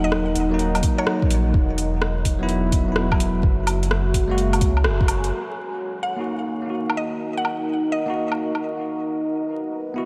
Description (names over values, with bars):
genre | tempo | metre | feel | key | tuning
future garage | 127 BPM | 4/4 | swing 66% on 16ths | Eb phrygian | A4 = 440 Hz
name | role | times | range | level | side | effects
mallet-like synth pluck | melody | 0.0-1.6, 6.0-8.4 s | Db5 to Gb5 | -34 LUFS | equal | chorus, delay
bell-like tine electric piano | accompaniment | 0.0-10.1 s | Gb3 to Gb4 | -29 LUFS | equal | sidechain pumping, low-pass filter, delay
deep dark ambient pad | sustained chords | 0.0-10.1 s | Eb4 to Bb5 | -29 LUFS | equal | chorus, built-in reverb, sidechain pumping
warm sub bass | bass | 0.0-5.3 s | Eb1 to Db2 | -25 LUFS | equal | sidechain pumping
deep house drum kit | drums | 0.1-8.6 s | hi-hat, rim click, woodblock | -31 LUFS | equal | none
electronic kick drum | drums | 0.8-5.1 s | none | -22 LUFS | equal | none
room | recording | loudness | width
wet cathedral reverb, RT60 6.2 s | dreamy mix soaked in reverb, vinyl crackle | -22 LUFS | mono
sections
0.0-5.3 A section; 5.3-10.1 B section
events
band accent 4.8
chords
0.0 Ebm; 1.5 Esus2; 3.4 Gbadd9; 5.3 Ebm; 9.1 Esus2